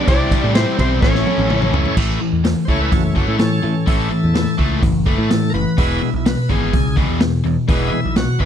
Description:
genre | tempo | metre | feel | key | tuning
classic rock | 126 BPM | 4/4 | straight | A mixolydian | A4 = 439 Hz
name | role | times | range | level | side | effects
electric slide guitar | melody | 0.0-1.7 s | C5 to D5 | -23 LUFS | left 3 dB | slapback echo
octave-fuzz lead guitar | second line | 0.0-1.7 s | C4 to D4 | -27 LUFS | right 4 dB | none
overdriven tonewheel organ | sustained chords | 0.0-8.5 s | G#3 to C#5 | -25 LUFS | right 2 dB | slow rotary speaker
biting overdriven guitar | riff | 0.0-8.5 s | E2 to A4 | -21 LUFS | left 10 dB | none
crunchy overdriven guitar | riff | 0.0-2.0 s | A2 to E4 | -25 LUFS | equal | none
distorted electric guitar | riff | 0.0-8.5 s | E2 to E4 | -24 LUFS | right 14 dB | overdrive
clear concert grand piano | accompaniment | 0.1-1.9 s | E4 to C#5 | -28 LUFS | right 4 dB | none
picked electric bass | bass | 0.1-8.5 s | E1 to A2 | -20 LUFS | equal | none
vintage drum kit | drums | 0.1-8.5 s | crash cymbal, hi-hat, kick drum, snare drum, toms | -19 LUFS | equal | none
room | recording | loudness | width
studio reverb | dry, close 1970s-style studio recording | -14 LUFS | side -9 dB against mid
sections
0.0-2.0 A section; 2.0-8.5 B section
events
drum fill 1.0-2.0; tonewheel organ solo 2.0-8.5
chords
0.1 C; 1.0 A; 5.8 E

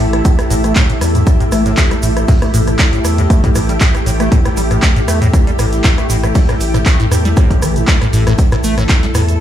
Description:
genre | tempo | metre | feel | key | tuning
acid house | 118 BPM | 4/4 | swing 54% on 16ths | unclear | A4 = 440 Hz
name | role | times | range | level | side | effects
string machine, full ensemble | sustained chords | 0.0-9.4 s | A3 to A4 | -20 LUFS | equal | ensemble chorus, sidechain pumping
liquid acid bass | riff | 0.0-9.2 s | A2 to A3 | -17 LUFS | equal | phaser, tube saturation
saturated sub bass | bass | 0.0-9.4 s | A1 to E2 | -16 LUFS | equal | tube saturation, sidechain pumping
dusty soul sampler-style drum kit | drums | 0.0-9.3 s | hi-hat, snare drum | -34 LUFS | right 2 dB | none
punchy analog drum machine | drums | 0.0-9.4 s | handclaps, hi-hat, rim click | -20 LUFS | equal | none
granular cloud pad | texture | 0.0-9.4 s | E4 to E5 | -23 LUFS | equal | built-in reverb, sidechain pumping
electronic kick drum | drums | 0.2-9.0 s | none | -12 LUFS | equal | none
tube shaker | percussion | 0.3-9.4 s | none | -29 LUFS | right 6 dB | none
room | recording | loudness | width
light reverb | played on a big sound system in a bare room, stone room reverb | -10 LUFS | side -11 dB against mid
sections
0.0-9.4 A section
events
none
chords
0.0 A5

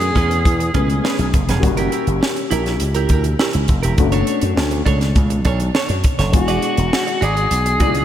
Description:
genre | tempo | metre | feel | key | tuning
polished 1980s jazz-funk pop | 102 BPM | 4/4 | straight | A major | A4 = 440 Hz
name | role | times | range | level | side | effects
growling alto saxophone | melody | 0.0-1.3, 6.4-8.0 s | F#4 to G#4 | -20 LUFS | equal | diffuse ambient delay
dark baby grand piano | accompaniment | 0.0-8.0 s | F#3 to G#4 | -24 LUFS | left 5 dB | lush chorus
direct-recorded clean electric guitar | riff | 0.0-8.0 s | C#4 to D5 | -24 LUFS | right 6 dB | lush chorus
slap bass with an envelope filter | bass | 0.0-8.0 s | E1 to F#2 | -19 LUFS | equal | tube saturation
crisp fusion drum kit | drums | 0.0-8.0 s | hi-hat, kick drum, snare drum | -19 LUFS | equal | none
room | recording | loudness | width
moderate lush hall reverb, RT60 2.5 s | dreamy mix soaked in reverb | -15 LUFS | side -11 dB against mid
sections
0.0-8.0 A section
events
none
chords
0.0 Amaj9; 1.6 F#7b9; 4.0 Bm9/F#; 6.3 E9

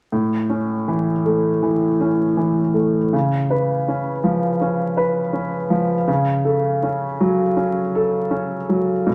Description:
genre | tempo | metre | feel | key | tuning
neoclassical minimalist piano | 80 BPM | 4/4 | rubato | A major | A4 = 440 Hz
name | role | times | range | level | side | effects
clear upright piano | solo | 0.1-9.1 s | A2 to B4 | -20 LUFS | equal | none
room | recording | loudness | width
moderate studio reverb, RT60 0.6 s | vinyl crackle | -20 LUFS | mono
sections
0.1-9.1 A section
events
none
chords
0.1 A; 3.1 C#7; 6.1 F#m/C#

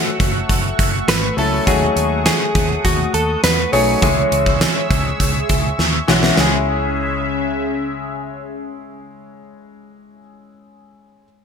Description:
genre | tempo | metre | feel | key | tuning
1980s-style pop | 102 BPM | 4/4 | straight | C# minor | A4 = 441 Hz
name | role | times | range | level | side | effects
direct-recorded clean electric guitar | melody | 0.0-4.9 s | F#4 to C#5 | -20 LUFS | equal | analog chorus, digital delay
clear concert grand piano | accompaniment | 0.0-11.3 s | E3 to A4 | -22 LUFS | left 3 dB | lush chorus
phased analog pad | sustained chords | 0.0-9.5 s | C#3 to E6 | -24 LUFS | left 2 dB | phaser, chorus
vintage muted fingered electric bass | bass | 0.2-10.2 s | F#1 to E2 | -22 LUFS | equal | none
gated 80s drum kit | drums | 0.2-6.5 s | hi-hat, kick drum, snare drum, tambourine | -18 LUFS | right 1 dB | gated reverb
room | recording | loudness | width
moderate lush hall reverb, RT60 2.0 s | bright 1980s-style digital production | -14 LUFS | side -6 dB against mid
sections
0.0-6.4 A section; 6.4-8.7 B section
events
drum fill 5.8-6.4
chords
0.0 F#m7; 1.7 D#m7b5; 4.0 C#m

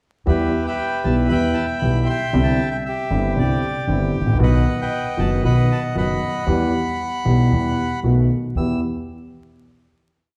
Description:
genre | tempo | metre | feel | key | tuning
tango | 116 BPM | 4/4 | rubato | E minor | A4 = 440 Hz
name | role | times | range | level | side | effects
bandoneon | melody | 0.3-8.8 s | G4 to E6 | -27 LUFS | equal | none
warm concert grand piano | accompaniment | 0.3-8.8 s | F#1 to G4 | -22 LUFS | equal | none
upright bass | bass | 0.3-8.8 s | F#1 to E2 | -25 LUFS | equal | none
room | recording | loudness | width
wet large studio reverb, RT60 1.5 s | heard from further back in the room, vinyl crackle | -20 LUFS | mono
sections
0.3-8.5 A section; 8.5-10.4 final chord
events
none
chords
0.3 Em; 2.3 Cadd9; 4.4 B; 6.5 Em; 8.0 B7; 8.5 Em

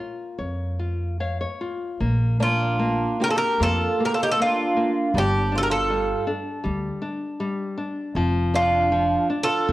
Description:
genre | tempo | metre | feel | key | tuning
fado-style ballad | 73-81 BPM | 4/4 | rubato | Bb major | A4 = 440 Hz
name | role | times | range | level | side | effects
nylon-string guitar | accompaniment | 0.0-9.7 s | F3 to F5 | -28 LUFS | left 2 dB | none
upright bass | bass | 0.4-9.7 s | F1 to F2 | -25 LUFS | equal | none
Irish bouzouki | melody | 2.4-9.7 s | F4 to Bb4 | -22 LUFS | right 1 dB | none
fingerpicked twelve-string acoustic guitar | second line | 2.4-9.7 s | D4 to G4 | -28 LUFS | right 2 dB | none
room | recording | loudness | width
moderate recital hall reverb, RT60 1.5 s | worn, warbling old tape, cassette tape, warbly pitch drift | -21 LUFS | side -16 dB against mid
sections
0.0-2.0 A section; 2.0-9.7 B section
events
nylon-string guitar fill 0.8-2.0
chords
0.0 Bbm; 2.0 Bb; 5.1 G5; 8.2 F5

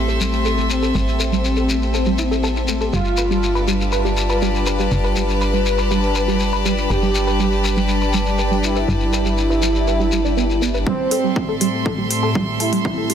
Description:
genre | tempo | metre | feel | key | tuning
melodic techno | 121 BPM | 4/4 | straight | A minor | A4 = 440 Hz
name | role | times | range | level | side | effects
lush unison pad | sustained chords | 0.0-13.1 s | A2 to B4 | -25 LUFS | equal | chorus, sidechain pumping
plucky analog bass | bass | 0.0-10.8 s | G1 to A1 | -21 LUFS | equal | tube saturation, sidechain pumping
bright chamber string section | texture | 0.0-13.1 s | G4 to C6 | -26 LUFS | equal | sidechain pumping
tight sequenced synth | arpeggios | 0.1-13.1 s | G3 to B4 | -23 LUFS | right 2 dB | chorus, phaser, sidechain pumping, ping-pong delay
shekere | percussion | 0.1-10.8 s | none | -27 LUFS | left 5 dB | none
analog synth brass | melody | 0.7-13.1 s | C4 to B4 | -23 LUFS | equal | chorus, cassette tape, sidechain pumping, dub echo
electronic kick drum | drums | 10.9-12.9 s | none | -23 LUFS | equal | overdrive, high-pass filter on kick, studio reverb
electronic hi-hat | drums | 11.1-13.1 s | none | -23 LUFS | equal | overdrive, studio reverb
room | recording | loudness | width
moderate concert hall reverb, RT60 1.9 s, digital ambience | dense, heavily limited modern master | -16 LUFS | side -8 dB against mid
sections
0.0-10.9 A section; 10.9-13.1 B section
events
build-up 10.9-13.1; filter sweep 10.9-13.1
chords
0.0 Am7; 2.9 G7; 10.9 Am7

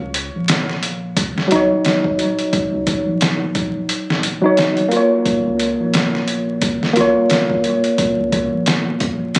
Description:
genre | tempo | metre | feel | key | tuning
trip hop | 88 BPM | 4/4 | swing 58% on 16ths | Eb minor | A4 = 445 Hz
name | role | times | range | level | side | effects
round analog bass | bass | 0.0-9.3 s | Eb1 to Db2 | -30 LUFS | equal | none
trip hop sampler-style drum kit | drums | 0.1-9.4 s | hi-hat, kick drum, snare drum | -22 LUFS | equal | overdrive
tine electric piano | accompaniment | 1.5-9.4 s | Gb3 to Db5 | -19 LUFS | equal | overdrive, harmonic tremolo, tape echo
room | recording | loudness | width
moderate plate reverb, RT60 2.1 s | recorded on a phone in the room, studio ambience, vinyl crackle | -18 LUFS | mono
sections
0.0-9.4 A section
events
none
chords
0.0 Ebm7

